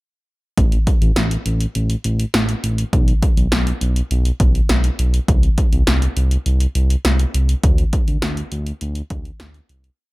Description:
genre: synth-pop.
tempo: 102 BPM.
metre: 4/4.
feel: straight.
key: A minor.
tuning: A4 = 440 Hz.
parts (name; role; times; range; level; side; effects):
smooth gliding synth bass; bass; 0.6-9.9 s; A1 to D2; -17 LUFS; equal; none.
punchy analog drum machine; drums; 0.6-10.0 s; hi-hat, kick drum, snare drum; -17 LUFS; equal; none.
room: little or no reverb.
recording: none.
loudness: -15 LUFS.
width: side -21 dB against mid.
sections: 0.6-10.0 verse.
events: fade-out 7.6-10.0.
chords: none.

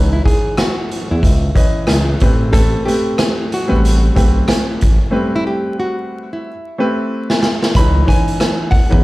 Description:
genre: hip hop, boom-bap hip-hop.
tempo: 92 BPM.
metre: 4/4.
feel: swing 61% on 16ths.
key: unclear.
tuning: A4 = 442 Hz.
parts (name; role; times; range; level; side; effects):
dark baby grand piano; accompaniment; 0.0-9.0 s; E3 to D#5; -19 LUFS; left 1 dB; none.
smooth gliding synth bass; bass; 0.0-9.0 s; A1 to E2; -14 LUFS; equal; none.
nylon-string guitar; melody; 0.1-9.0 s; E4 to B5; -22 LUFS; equal; tape echo.
raw garage drum kit; drums; 0.3-9.0 s; hi-hat, kick drum, rim click, snare drum; -15 LUFS; equal; none.
room: light reverb.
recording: played on a big sound system in a bare room, large studio reverb, vinyl crackle.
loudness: -13 LUFS.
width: side -19 dB against mid.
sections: 0.0-7.8 A section; 7.8-9.0 B section.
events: break 5.1-7.8; drum fill 6.4-7.8.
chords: 0.0 C#m9; 2.2 Am9; 7.8 C#m9.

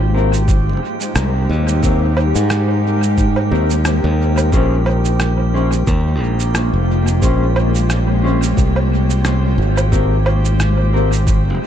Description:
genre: ambient dub.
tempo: 89 BPM.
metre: 4/4.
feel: swing 56% on 16ths.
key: Bb dorian.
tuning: A4 = 437 Hz.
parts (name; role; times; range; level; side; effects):
granular cloud pad; sustained chords; 0.0-11.7 s; Ab3 to Db5; -22 LUFS; left 1 dB; built-in reverb.
modern bright fingered electric bass; bass; 0.0-11.6 s; F1 to Ab2; -15 LUFS; equal; none.
drifting glass-harmonics texture; texture; 0.0-11.7 s; G4 to G5; -27 LUFS; right 2 dB; chorus, built-in reverb.
mellow electric guitar; stabs; 0.1-11.1 s; C4 to C5; -24 LUFS; left 4 dB; dub echo.
electronic cabasa, rim click and woodblock; drums; 0.3-11.4 s; none; -24 LUFS; right 2 dB; dub echo.
electronic kick drum; drums; 0.5-11.4 s; none; -16 LUFS; equal; none.
room: digital ambience.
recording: echo-heavy mix.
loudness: -13 LUFS.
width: side -10 dB against mid.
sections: 0.0-11.7 A section.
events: none.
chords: 0.0 Abmaj9; 4.5 Bbm7; 9.9 Abmaj9.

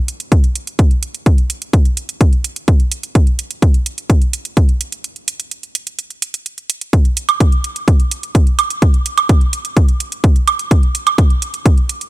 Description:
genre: EDM, festival progressive house.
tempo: 127 BPM.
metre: 4/4.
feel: straight.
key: none.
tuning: none.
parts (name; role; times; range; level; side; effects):
electronic hi-hat and woodblock; drums; 0.1-12.1 s; none; -19 LUFS; right 6 dB; none.
electronic kick drum; drums; 0.3-11.8 s; none; -11 LUFS; equal; none.
room: digital ambience.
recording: none.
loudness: -13 LUFS.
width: side -16 dB against mid.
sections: 0.0-12.1 A section.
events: break 5.0-6.9.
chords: none.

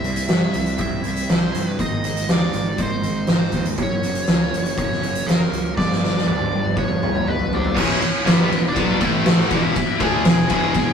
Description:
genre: quiet-loud alternative rock.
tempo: 121 BPM.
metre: 4/4.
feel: straight.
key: unclear.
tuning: A4 = 440 Hz.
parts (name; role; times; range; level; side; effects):
dark smooth lead guitar; melody; 0.0-10.9 s; B3 to G#5; -26 LUFS; left 2 dB; overdrive, slapback echo.
twelve-string electric guitar; arpeggios; 0.0-7.8 s; F#2 to E4; -27 LUFS; right 6 dB; none.
fuzz picked electric bass; bass; 0.0-10.9 s; E1 to G2; -28 LUFS; left 1 dB; overdrive.
oversized low-tuned drum kit; drums; 0.0-10.9 s; crash cymbal, hi-hat, kick drum, ride cymbal, snare drum, toms; -19 LUFS; equal; none.
cranked stack guitar; riff; 7.8-10.9 s; E2 to D4; -26 LUFS; left 7 dB; overdrive.
heavy high-gain guitar; riff; 7.8-10.9 s; E2 to D4; -24 LUFS; equal; distortion.
thick fuzz guitar; riff; 7.8-10.9 s; E2 to D4; -27 LUFS; right 4 dB; none.
room: light reverb.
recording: rough rehearsal-room recording, tube saturation.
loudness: -17 LUFS.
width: side -7 dB against mid.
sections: 0.0-7.8 A section; 7.8-10.9 B section.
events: drum fill 5.8-7.8.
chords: 0.0 C; 1.8 G#; 3.8 F#; 5.8 G; 7.8 E5; 9.0 A5; 9.5 E.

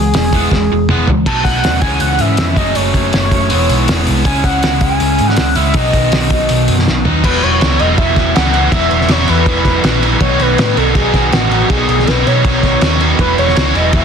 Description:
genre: indie rock.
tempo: 161 BPM.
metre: 4/4.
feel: straight.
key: E major.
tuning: A4 = 440 Hz.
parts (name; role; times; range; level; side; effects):
pulse-width lead; melody; 0.0-14.0 s; F#4 to A5; -17 LUFS; equal; chorus, plate reverb.
crunchy overdriven guitar; riff; 0.0-14.0 s; F#2 to E4; -16 LUFS; equal; none.
hollow-body short-scale picked electric bass; bass; 0.0-14.0 s; E1 to B2; -16 LUFS; equal; none.
cloth-damped thuddy drum kit; drums; 0.1-14.0 s; crash cymbal, hi-hat, kick drum, snare drum, toms; -15 LUFS; equal; none.
room: light reverb.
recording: dense, heavily limited modern master.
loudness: -10 LUFS.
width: side -7 dB against mid.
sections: 0.0-1.3 A section; 1.3-7.2 B section; 7.2-14.0 C section.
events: analog synth lead solo 0.0-1.3; drum fill 0.5-1.3, 6.9-7.2.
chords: 0.0 E; 1.3 B7; 1.8 C#m; 2.6 F#m; 3.5 E; 4.3 C#m; 5.8 B; 7.2 Esus2; 10.2 Badd9; 13.2 Esus2.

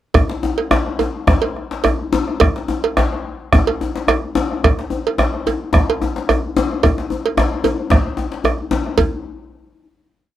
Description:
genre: west african traditional, West African drum ensemble.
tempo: 109 BPM.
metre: 4/4.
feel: swing 53% on 16ths.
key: none.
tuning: none.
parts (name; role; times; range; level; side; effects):
bombo; percussion; 0.1-9.2 s; none; -16 LUFS; right 1 dB; none.
cowbell; percussion; 0.1-9.2 s; none; -19 LUFS; right 6 dB; none.
djembe; percussion; 0.1-9.2 s; none; -19 LUFS; left 3 dB; none.
room: moderate booth ambience, RT60 0.2 s.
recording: dry, close 1970s-style studio recording.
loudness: -15 LUFS.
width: side -12 dB against mid.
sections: 0.1-9.0 A section; 9.0-10.4 final hit.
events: speeding up 0.1-10.4.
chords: none.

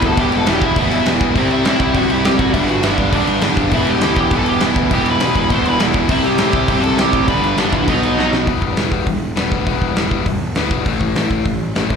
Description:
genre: punk rock.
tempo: 202 BPM.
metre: 4/4.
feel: straight.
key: E minor.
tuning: A4 = 440 Hz.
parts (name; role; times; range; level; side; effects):
high-gain lead guitar; melody; 0.0-8.3 s; C4 to C6; -21 LUFS; equal; distortion, ping-pong delay.
crunchy overdriven guitar; riff; 0.0-12.0 s; G2 to E4; -19 LUFS; left 11 dB; slapback echo.
crunchy overdriven guitar; riff; 0.0-8.5 s; E2 to C4; -19 LUFS; right 10 dB; slapback echo.
fuzz picked electric bass; bass; 0.0-12.0 s; E1 to A2; -22 LUFS; right 1 dB; overdrive.
big rock drum kit; drums; 0.0-12.0 s; crash cymbal, hi-hat, kick drum, snare drum; -19 LUFS; equal; none.
room: moderate club reverb, RT60 0.5 s.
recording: live gig heard through the venue's PA, club reverb.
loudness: -13 LUFS.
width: side -6 dB against mid.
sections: 0.0-8.5 A section; 8.5-12.0 B section.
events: drum fill 8.2.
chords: 0.0 Em; 1.4 C; 2.5 G; 3.7 Em; 6.1 C; 7.3 G; 7.9 B; 8.5 Em; 10.9 A5.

